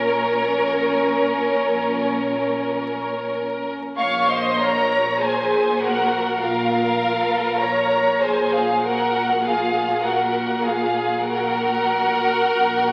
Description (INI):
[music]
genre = classical, slow romantic movement for string orchestra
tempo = 43-51 BPM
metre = 4/4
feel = rubato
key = Bb minor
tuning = A4 = 445 Hz
[part]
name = warm symphonic violin section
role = melody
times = 0.0-12.9 s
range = Bb4 to Db6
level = -25 LUFS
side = equal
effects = none
[part]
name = warm symphonic violin section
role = second line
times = 0.0-12.9 s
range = Db4 to F5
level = -24 LUFS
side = equal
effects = none
[part]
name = rich symphonic viola section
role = accompaniment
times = 0.0-12.9 s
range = F4 to Db5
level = -30 LUFS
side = equal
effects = none
[part]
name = rich symphonic cello section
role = bass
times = 0.0-12.9 s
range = Bb2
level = -32 LUFS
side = equal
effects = none
[part]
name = warm symphonic double bass section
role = bass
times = 0.0-12.9 s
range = Bb1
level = -42 LUFS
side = equal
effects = none
[sound]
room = wet concert hall reverb, RT60 1.8 s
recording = very old 78 rpm record, vinyl crackle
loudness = -21 LUFS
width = mono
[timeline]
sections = 0.0-4.0 A section; 4.0-12.9 A section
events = none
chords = 0.0 Bbm; 4.0 Bb5